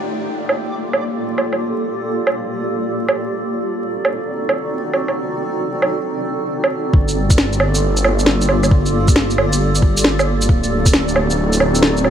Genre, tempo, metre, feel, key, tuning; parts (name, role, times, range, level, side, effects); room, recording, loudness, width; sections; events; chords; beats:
future garage; 135 BPM; 4/4; swing 66% on 16ths; G minor; A4 = 440 Hz
granular cloud pad; sustained chords; 0.0-12.1 s; Bb3 to D5; -20 LUFS; right 1 dB; built-in reverb, sidechain pumping
electronic woodblock, shaker and snare drum; drums; 0.5-12.1 s; -18 LUFS; right 1 dB; low-pass filter on perc, studio reverb, low-pass filter on snare
swelling detuned saw bass; bass; 6.9-12.1 s; D1 to G1; -18 LUFS; equal; sidechain pumping
electronic kick drum; drums; 6.9-10.9 s; -13 LUFS; equal; studio reverb
light reverb, digital ambience; vinyl crackle; -15 LUFS; side -9 dB against mid
0.0-6.9 A section; 6.9-12.1 B section
0.0 Gm9; 3.4 D7b9; 6.9 Gm9; 10.5 D7b9
0.27 0.71 1.16 | 1.60 2.05 2.49 2.94 | 3.38 3.82 4.27 4.71 | 5.16 5.60 6.05 6.49 | 6.93 7.38 7.82 8.27 | 8.71 9.16 9.60 10.05 | 10.49 10.94 11.38 11.82